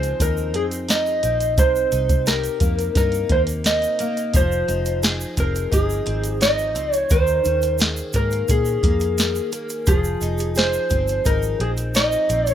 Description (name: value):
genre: indie pop, bedroom pop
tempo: 87 BPM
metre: 4/4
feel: straight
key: F minor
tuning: A4 = 440 Hz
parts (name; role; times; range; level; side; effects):
- electric slide guitar; melody; 0.0-12.5 s; Ab4 to Eb5; -21 LUFS; equal; wide subtle chorus
- picked steel-string acoustic guitar; accompaniment; 0.0-12.5 s; C3 to Ab4; -28 LUFS; left 2 dB; analog chorus, warbly pitch drift
- vintage muted fingered electric bass; bass; 0.0-12.5 s; F1 to Bb2; -24 LUFS; equal; none
- soft vintage rhythm box; drums; 0.0-12.5 s; hi-hat, kick drum, snare drum; -21 LUFS; equal; none
- egg shaker; percussion; 0.0-12.5 s; none; -34 LUFS; right 6 dB; none
room: little or no reverb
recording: rough home demo mix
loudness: -18 LUFS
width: side -10 dB against mid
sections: 0.0-12.5 A section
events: none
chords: 0.0 Fm7; 1.6 Cm7; 4.3 Fm7; 7.1 Eb7sus4; 9.9 Fm7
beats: 0.20 0.89 | 1.58 2.27 2.96 3.65 | 4.34 5.03 5.72 6.42 | 7.11 7.80 8.49 9.18 | 9.88 10.57 11.26 11.95